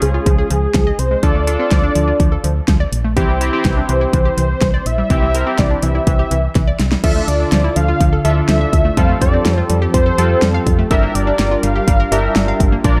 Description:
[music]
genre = synth-pop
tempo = 124 BPM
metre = 4/4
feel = straight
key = unclear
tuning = A4 = 436 Hz
[part]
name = unison lead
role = melody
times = 0.0-13.0 s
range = Ab4 to F5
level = -22 LUFS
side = equal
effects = digital delay
[part]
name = warm analog keys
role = accompaniment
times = 0.0-13.0 s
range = C4 to Bb4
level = -24 LUFS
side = equal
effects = chorus
[part]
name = analog pluck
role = arpeggios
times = 0.0-13.0 s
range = E3 to F5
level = -26 LUFS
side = equal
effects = chorus, digital delay
[part]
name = solid FM bass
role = bass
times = 0.0-13.0 s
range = G1 to F2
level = -20 LUFS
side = equal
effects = none
[part]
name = pop drum kit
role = drums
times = 0.0-13.0 s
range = crash cymbal, hi-hat, kick drum, snare drum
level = -19 LUFS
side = equal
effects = overdrive
[part]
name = warm analog pad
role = sustained chords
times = 7.0-13.0 s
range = D3 to Bb4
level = -25 LUFS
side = equal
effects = chorus
[sound]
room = light reverb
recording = dark, warm production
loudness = -15 LUFS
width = mono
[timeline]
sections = 0.0-7.0 A section; 7.0-13.0 B section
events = drum fill 6.6-7.0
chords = 0.0 Dbadd9; 1.2 Dm; 3.2 Cadd9; 7.0 Dmadd9; 9.0 Fadd9; 10.9 Gm7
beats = 0.26 0.75 | 1.23 1.72 2.20 2.68 | 3.17 3.65 4.13 4.62 | 5.10 5.59 6.07 6.55 | 7.04 7.52 8.01 8.49 | 8.97 9.46 9.94 10.42 | 10.91 11.39 11.88 12.36 | 12.84

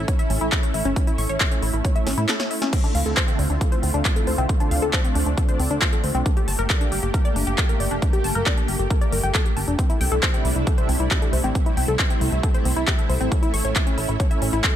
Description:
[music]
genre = uplifting trance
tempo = 136 BPM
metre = 4/4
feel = straight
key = D minor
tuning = A4 = 436 Hz
[part]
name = analog string pad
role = sustained chords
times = 0.0-14.8 s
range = C3 to G4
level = -28 LUFS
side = right 2 dB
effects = ensemble chorus, sidechain pumping
[part]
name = wide unison pluck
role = arpeggios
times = 0.0-14.7 s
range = C4 to C#6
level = -27 LUFS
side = left 3 dB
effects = sidechain pumping, dub echo
[part]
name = plucky analog bass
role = bass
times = 0.0-14.6 s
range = F1 to A2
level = -23 LUFS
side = equal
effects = sidechain pumping
[part]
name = big-room dance drum kit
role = drums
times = 0.1-14.7 s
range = crash cymbal, handclaps, hi-hat, snare drum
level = -26 LUFS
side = equal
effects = none
[part]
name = electronic kick drum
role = drums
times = 0.1-14.7 s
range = none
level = -21 LUFS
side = equal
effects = none
[sound]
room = little or no reverb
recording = none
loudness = -19 LUFS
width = side -11 dB against mid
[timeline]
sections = 0.0-14.8 A section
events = drum fill 2.1-2.7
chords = 0.0 A; 2.7 Dm7; 6.3 Gmadd9; 9.8 C6; 13.3 A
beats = 0.08 0.52 | 0.96 1.40 1.84 2.29 | 2.73 3.17 3.61 4.05 | 4.49 4.93 5.38 5.82 | 6.26 6.70 7.14 7.58 | 8.02 8.46 8.90 9.35 | 9.79 10.23 10.67 11.11 | 11.55 11.99 12.43 12.88 | 13.32 13.76 14.20 14.64

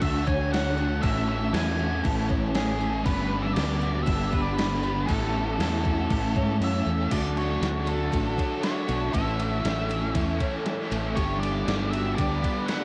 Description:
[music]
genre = rock, shoegaze and dream pop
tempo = 118 BPM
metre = 4/4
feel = straight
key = A major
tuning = A4 = 440 Hz
[part]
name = octave-fuzz lead guitar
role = melody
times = 0.0-12.8 s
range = G#4 to G#5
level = -35 LUFS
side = equal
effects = distortion, cassette tape, tape echo
[part]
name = granular cloud pad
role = sustained chords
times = 0.0-12.8 s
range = A3 to E6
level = -42 LUFS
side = equal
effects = none
[part]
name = picked twelve-string acoustic guitar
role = arpeggios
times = 0.0-12.8 s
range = F#4 to C#5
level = -39 LUFS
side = equal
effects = ensemble chorus, cassette tape, tape echo
[part]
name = biting overdriven guitar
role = riff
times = 0.0-12.8 s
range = G2 to F#4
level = -36 LUFS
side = equal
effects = subtle chorus, cassette tape
[part]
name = overdriven electric guitar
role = riff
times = 0.0-12.8 s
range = G2 to F#4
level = -32 LUFS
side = equal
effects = reverse reverb, cassette tape
[part]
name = fingered electric bass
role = bass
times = 0.0-12.4 s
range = G1 to G#2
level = -31 LUFS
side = equal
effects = none
[part]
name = clean 12-bit digital drum machine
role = drums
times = 0.0-12.8 s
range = crash cymbal, kick drum, ride cymbal, snare drum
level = -33 LUFS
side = equal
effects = none
[sound]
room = little or no reverb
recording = home recording on cassette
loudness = -26 LUFS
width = mono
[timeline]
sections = 0.0-7.1 A section; 7.1-12.8 B section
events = kick and snare drop out 6.6-7.1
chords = 0.0 Dmaj9; 1.0 Amaj7; 3.1 Gmaj7; 5.1 Amaj7; 7.1 Dmaj9; 9.1 Amaj7; 11.2 Gmaj7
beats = 0.02 0.52 | 1.03 1.54 2.05 2.55 | 3.06 3.57 4.07 4.58 | 5.09 5.59 6.10 6.61 | 7.11 7.62 8.13 8.63 | 9.14 9.65 10.15 10.66 | 11.17 11.68 12.18 12.69

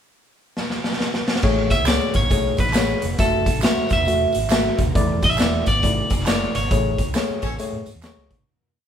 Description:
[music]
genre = uptempo 1960s-style soul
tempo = 136 BPM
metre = 4/4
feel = swing 63% on 8ths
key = A major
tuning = A4 = 440 Hz
[part]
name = raw garage drum kit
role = drums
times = 0.6-8.4 s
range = crash cymbal, hi-hat, kick drum, snare drum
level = -21 LUFS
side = equal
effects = none
[part]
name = tine electric piano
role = accompaniment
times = 1.4-8.4 s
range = A2 to C#6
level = -23 LUFS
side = left 2 dB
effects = none
[part]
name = vintage muted fingered electric bass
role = bass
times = 1.4-8.4 s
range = D#1 to A2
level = -26 LUFS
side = equal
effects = none
[part]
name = congas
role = percussion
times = 1.4-8.5 s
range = none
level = -36 LUFS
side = right 6 dB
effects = none
[part]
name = tambourine and handclaps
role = percussion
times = 1.4-8.4 s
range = none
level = -33 LUFS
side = right 3 dB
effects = none
[part]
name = electric guitar at the edge of break-up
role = melody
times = 1.7-8.0 s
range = A4 to E5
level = -24 LUFS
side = right 2 dB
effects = none
[part]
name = warm horn section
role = second line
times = 7.4-7.5 s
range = C#4 to C#5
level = -33 LUFS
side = right 1 dB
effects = none
[sound]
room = moderate studio ambience, RT60 0.5 s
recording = band playing live in one room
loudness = -18 LUFS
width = side -9 dB against mid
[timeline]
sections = 0.0-1.4 pickup bar; 1.4-8.5 A section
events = drum fill 0.6-1.4; fade-out 6.7-8.5; band accent 6.7-8.5; tine electric piano fill 7.8-8.5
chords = 0.0 N.C.; 1.4 Amaj7; 3.2 F#m7; 4.9 E7sus4; 6.7 Amaj7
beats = 0.12 0.56 0.99 | 1.43 1.87 2.31 2.75 | 3.19 3.63 4.07 4.51 | 4.95 5.39 5.83 6.27 | 6.71 7.15 7.59 8.03

